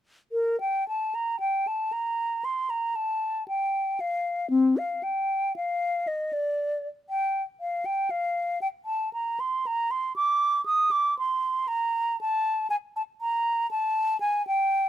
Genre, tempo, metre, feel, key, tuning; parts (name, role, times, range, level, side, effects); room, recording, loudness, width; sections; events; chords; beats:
classical, baroque-style fantasia for unaccompanied flute; 59 BPM; 4/4; rubato; Bb major; A4 = 439 Hz
hollow concert flute; solo; 0.3-14.9 s; C4 to Eb6; -24 LUFS; equal
little or no reverb; close, detailed microphones; -25 LUFS; side -11 dB against mid
0.3-14.9 A section
| 0.31 1.41 2.45 3.50 | 4.54 5.58 6.60 7.61 | 8.63 9.66 10.68 11.70 | 12.71 13.71 14.72